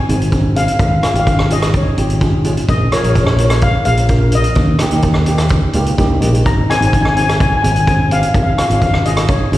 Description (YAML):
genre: calypso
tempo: 127 BPM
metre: 4/4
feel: straight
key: Ab major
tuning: A4 = 440 Hz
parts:
  - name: steel pan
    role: melody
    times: 0.0-9.6 s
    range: Db5 to Bb5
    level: -18 LUFS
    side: left 3 dB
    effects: slapback echo, analog delay
  - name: steel pan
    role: accompaniment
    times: 0.1-9.6 s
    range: Bb3 to F5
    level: -21 LUFS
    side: right 1 dB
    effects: slapback echo
  - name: modern bright fingered electric bass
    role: bass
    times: 0.1-9.6 s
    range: Ab1 to Eb2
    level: -15 LUFS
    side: equal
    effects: none
  - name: street-band drum kit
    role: drums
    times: 0.1-9.6 s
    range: hi-hat, kick drum, rim click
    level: -16 LUFS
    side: equal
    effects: none
room: small room reverb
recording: live gig heard through the venue's PA, recital hall reverb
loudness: -11 LUFS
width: side -15 dB against mid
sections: 0.0-9.6 A section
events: steel pan fill 5.5-6.5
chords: 0.0 Ab; 0.8 Db/Ab; 2.7 Bbm; 4.6 Eb; 6.5 Ab; 8.3 Db/Ab